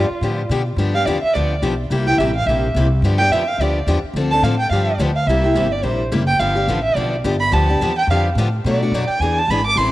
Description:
acoustic string swing (jazz manouche); 214 BPM; 4/4; swing 58% on 8ths; G mixolydian; A4 = 439 Hz
dark violin; second line; 0.0-9.9 s; F4 to D6; -20 LUFS; right 2 dB; cassette tape
picked steel-string acoustic guitar; accompaniment; 0.0-9.9 s; B2 to A4; -21 LUFS; left 3 dB; cassette tape
upright bass; bass; 0.0-9.9 s; F#1 to B2; -20 LUFS; equal
light reverb, studio reverb; home recording on cassette; -15 LUFS; side -16 dB against mid
0.8-9.9 A section
violin solo 0.8-9.9
0.0 G7; 1.9 C7; 3.0 G7; 4.1 Dm7; 4.7 G7; 5.3 C7; 6.4 G7; 8.6 Bm7; 9.2 E7

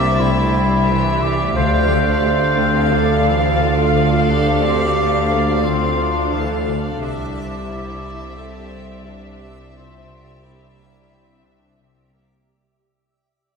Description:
cinematic, suspense film score; 88 BPM; 4/4; straight; A4 = 440 Hz
muted symphonic violin section; melody; 0.0-12.2 s; E5 to F5; -24 LUFS; left 4 dB
muted symphonic violin section; second line; 0.0-12.2 s; C5 to D5; -29 LUFS; equal
warm clarinet; second line; 0.0-11.8 s; E4 to C5; -22 LUFS; equal
muted symphonic viola section; accompaniment; 0.0-12.5 s; E3 to F4; -27 LUFS; right 2 dB
backwards swelling texture; sustained chords; 0.0-12.5 s; G4 to F5; -30 LUFS; right 4 dB; built-in reverb
mellow French horn section; sustained chords; 0.0-12.1 s; D4 to A4; -28 LUFS; left 1 dB
concert harp; riff; 0.0-12.5 s; C3 to D4; -24 LUFS; left 4 dB
muted symphonic cello section; bass; 0.0-12.2 s; C2 to D2; -24 LUFS; right 1 dB
muted symphonic double bass section; bass; 0.0-12.2 s; C2 to D2; -24 LUFS; right 4 dB
sub bass with octave; drone; 0.0-12.5 s; C2 to D2; -26 LUFS; left 1 dB
wet concert hall reverb, RT60 2.2 s; minimal, uncompressed stereo recording; -15 LUFS; side -5 dB against mid
0.0-12.5 A section
fade-out 0.0-12.5
0.0 Cadd9; 1.6 Dm7; 7.0 Cadd9

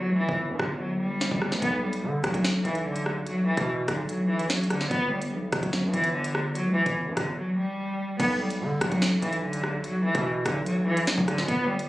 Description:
hip hop, drill; 146 BPM; 4/4; half-time; B minor; A4 = 440 Hz
warm cello; melody; 0.0-11.9 s; D3 to B3; -26 LUFS; equal; low-pass filter, tape echo
distorted 808-style bass; bass; 0.0-11.9 s; G1 to D3; -31 LUFS; equal; distortion
drill drum kit; drums; 0.3-11.9 s; crash cymbal, hi-hat, kick drum, rim click, snare drum; -30 LUFS; equal; vintage 12-bit sampler grit
little or no reverb; recorded on a phone in the room, studio reverb, compression; -24 LUFS; side -16 dB against mid
0.0-8.2 A section; 8.2-11.9 B section
break 0.0-1.6, 7.4-8.2
0.0 G5; 1.6 Bm; 4.9 N.C.; 8.2 Bm

